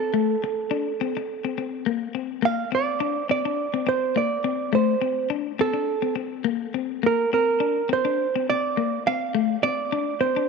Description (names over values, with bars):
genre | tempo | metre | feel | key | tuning
highlife | 104 BPM | 4/4 | straight | Bb major | A4 = 436 Hz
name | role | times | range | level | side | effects
hollow-body jazz guitar | melody | 0.0-10.5 s | A4 to F5 | -24 LUFS | right 7 dB | none
clean electric guitar | accompaniment | 0.0-10.5 s | A3 to D4 | -26 LUFS | left 15 dB | spring reverb
room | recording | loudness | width
moderate plate reverb, RT60 3.2 s | 1960s-style stereo with parts hard left and right | -22 LUFS | side -4 dB against mid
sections
0.0-2.4 A section; 2.4-10.5 B section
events
none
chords
0.1 Amadd11; 2.4 Bbadd9; 4.7 Amadd11; 7.0 Bbadd9; 9.3 Amadd11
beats
| 0.14 0.71 1.29 1.87 | 2.44 3.02 3.60 4.17 | 4.75 5.32 5.90 6.47 | 7.05 7.62 8.20 8.78 | 9.35 9.93